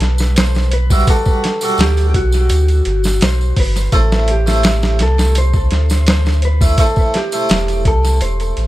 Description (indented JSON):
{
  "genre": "trip hop",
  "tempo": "84 BPM",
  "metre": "4/4",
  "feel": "straight",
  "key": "A dorian",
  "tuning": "A4 = 443 Hz",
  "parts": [
    { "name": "mellow electric guitar", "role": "melody", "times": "0.0-8.7 s", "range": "F#4 to C5", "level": "-21 LUFS", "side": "equal", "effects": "tape echo" },
    { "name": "harpsichord", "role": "accompaniment", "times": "0.0-8.7 s", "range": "G3 to F#5", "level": "-22 LUFS", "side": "right 1 dB", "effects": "tremolo, tape echo" },
    { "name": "warm sub bass", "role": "bass", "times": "0.0-8.7 s", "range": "E1 to D2", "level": "-14 LUFS", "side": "equal", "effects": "none" },
    { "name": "boom bap sampler-style drum kit", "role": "drums", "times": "0.0-8.7 s", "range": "hi-hat, kick drum, snare drum", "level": "-16 LUFS", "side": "equal", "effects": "small room reverb, tape echo" },
    { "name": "tambourine", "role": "percussion", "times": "0.2-8.5 s", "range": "none", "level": "-30 LUFS", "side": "right 2 dB", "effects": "tape echo" }
  ],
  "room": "digital ambience",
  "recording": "echo-heavy mix",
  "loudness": "-12 LUFS",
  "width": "side -16 dB against mid",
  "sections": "0.0-8.7 A section",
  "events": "none",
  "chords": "0.0 Gmaj7; 3.9 Am"
}